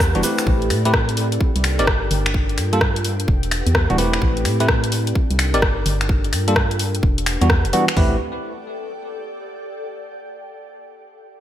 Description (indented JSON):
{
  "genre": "UK garage, two-step garage",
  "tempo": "128 BPM",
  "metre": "4/4",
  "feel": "swing 65% on 16ths",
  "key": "A dorian",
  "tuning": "A4 = 439 Hz",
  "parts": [
    { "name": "airy breathy pad", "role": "sustained chords", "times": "0.0-8.2 s", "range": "C4 to F#5", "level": "-30 LUFS", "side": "equal", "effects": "chorus, sidechain pumping" },
    { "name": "organ-like FM bass", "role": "bass", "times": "0.0-8.2 s", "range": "D1 to A2", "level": "-21 LUFS", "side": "equal", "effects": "none" },
    { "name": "garage drum kit", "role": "drums", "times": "0.0-8.1 s", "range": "hi-hat, kick drum, toms", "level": "-20 LUFS", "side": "equal", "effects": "small room ambience" },
    { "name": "garage drum kit", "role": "drums", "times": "0.0-8.0 s", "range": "finger snaps, hi-hat, rim click", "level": "-22 LUFS", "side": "left 1 dB", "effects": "small room ambience, gated reverb" },
    { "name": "ethereal airy pad", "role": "texture", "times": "0.0-9.8 s", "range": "G4 to G5", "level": "-33 LUFS", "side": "equal", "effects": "ensemble chorus, built-in reverb, phaser, sidechain pumping" },
    { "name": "bell-like tine electric piano", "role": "stabs", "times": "0.2-8.2 s", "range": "E3 to D5", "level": "-22 LUFS", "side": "equal", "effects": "analog chorus, low-pass filter, digital delay" }
  ],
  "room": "light reverb",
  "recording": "bright 1980s-style digital production",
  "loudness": "-16 LUFS",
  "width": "side -11 dB against mid",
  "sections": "0.0-8.0 A section; 8.0-9.8 B section",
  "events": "fade-out on ambient pad 0.0-8.0; filter sweep on analog synth pad 0.0-8.0",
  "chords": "0.5 Am9; 1.4 Cm9; 2.1 Gm9; 3.3 Em9; 4.2 Am9; 5.2 Cm9; 5.9 Gm9; 7.0 Em9; 8.0 Am9"
}